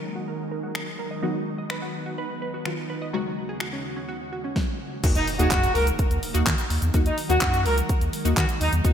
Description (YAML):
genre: dance-pop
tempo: 126 BPM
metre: 4/4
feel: straight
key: Eb minor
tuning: A4 = 440 Hz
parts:
  - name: punchy chord stab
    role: accompaniment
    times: 0.0-8.9 s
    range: Eb2 to Ab4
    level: -31 LUFS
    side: left 2 dB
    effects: chorus, sidechain pumping, low-pass filter
  - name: ethereal airy pad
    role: sustained chords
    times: 0.0-8.9 s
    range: Eb2 to Gb4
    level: -34 LUFS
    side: right 1 dB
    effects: ensemble chorus, built-in reverb, sidechain pumping, low-pass filter
  - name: glassy wavetable pluck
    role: arpeggios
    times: 0.2-4.5 s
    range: Eb3 to Eb5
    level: -35 LUFS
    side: right 2 dB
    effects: chorus, sidechain pumping, low-pass filter, digital delay
  - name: pop drum kit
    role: drums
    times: 0.8-8.9 s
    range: crash cymbal, finger snaps, handclaps, hi-hat, kick drum, shaker, snare drum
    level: -26 LUFS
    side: equal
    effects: gated reverb
  - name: round analog bass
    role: bass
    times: 5.0-8.9 s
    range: Db2 to Eb3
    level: -23 LUFS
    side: equal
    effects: sidechain pumping
  - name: impact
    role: sound effects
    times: 5.0-6.9 s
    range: none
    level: -34 LUFS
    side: equal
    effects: none
  - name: mellow horn section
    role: melody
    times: 5.2-8.7 s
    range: Eb4 to Bb4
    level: -26 LUFS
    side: equal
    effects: sidechain pumping, digital delay
room: moderate lush hall reverb, RT60 1.9 s, digital ambience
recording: bright 1980s-style digital production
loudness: -22 LUFS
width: side -8 dB against mid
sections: 0.0-5.0 A section; 5.0-8.9 B section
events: filter sweep 0.0-5.0; drop 5.0-8.9; impact 5.0-6.9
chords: 0.0 Ebm; 1.2 B/D#; 3.1 Dbsus4/Eb; 5.0 Ebm